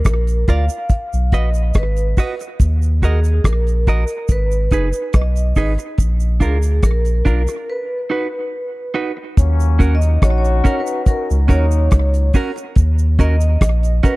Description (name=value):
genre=roots reggae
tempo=71 BPM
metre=4/4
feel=straight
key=Eb minor from 9.4 s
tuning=A4 = 439 Hz
part: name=vibraphone with medium hard mallets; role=melody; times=0.0-14.2 s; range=Ab4 to F5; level=-25 LUFS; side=equal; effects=dub echo
part: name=soft dub sub bass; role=bass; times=0.0-14.0 s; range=Gb1 to Eb2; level=-15 LUFS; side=equal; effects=tube saturation
part: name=cabasa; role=percussion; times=0.0-14.2 s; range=none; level=-38 LUFS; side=right 14 dB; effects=none
part: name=cloth-damped thuddy drum kit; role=drums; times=0.1-14.2 s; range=hi-hat, kick drum, rim click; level=-14 LUFS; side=equal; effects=none
part: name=clean electric guitar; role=accompaniment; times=0.5-14.2 s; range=Db4 to D#5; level=-24 LUFS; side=right 4 dB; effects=spring reverb, dub echo
part: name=mellow trombone section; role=second line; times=9.4-12.3 s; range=Gb3 to Gb4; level=-25 LUFS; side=left 5 dB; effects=dub echo
room=small room ambience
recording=dry, close 1970s-style studio recording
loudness=-14 LUFS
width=side -21 dB against mid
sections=0.0-9.4 A section; 9.4-14.2 B section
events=break 7.7-9.4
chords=0.0 Bb; 0.9 B; 2.6 Ebm; 4.3 Abm; 6.0 Bb; 7.7 B; 9.4 Ebm7